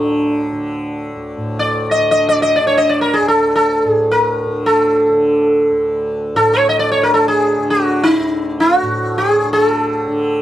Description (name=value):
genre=indian classical, Hindustani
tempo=free time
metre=none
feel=none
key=unclear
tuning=A4 = 440 Hz
part: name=sitar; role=melody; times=0.0-10.4 s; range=D4 to Eb5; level=-13 LUFS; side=equal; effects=none
part: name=tanpura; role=drone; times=0.0-10.4 s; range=D2 to D3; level=-20 LUFS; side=equal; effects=none
room=moderate booth ambience, RT60 0.2 s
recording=dry, close 1970s-style studio recording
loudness=-12 LUFS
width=side -12 dB against mid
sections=0.0-1.4 A section; 1.4-10.4 A section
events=none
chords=none